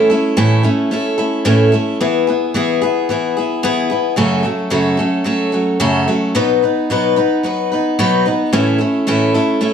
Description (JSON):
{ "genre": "rock", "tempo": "110 BPM", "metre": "4/4", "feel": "straight", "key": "A lydian", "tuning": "A4 = 440 Hz", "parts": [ { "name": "picked steel-string acoustic guitar", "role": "solo", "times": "0.0-9.7 s", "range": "F#2 to B4", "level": "-13 LUFS", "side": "equal", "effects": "none" } ], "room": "moderate large studio reverb, RT60 0.9 s", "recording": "small room ambience", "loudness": "-13 LUFS", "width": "side -7 dB against mid", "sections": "0.0-9.7 A section", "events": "none", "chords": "0.0 A; 2.0 E; 4.2 F#m; 6.3 B; 8.5 A" }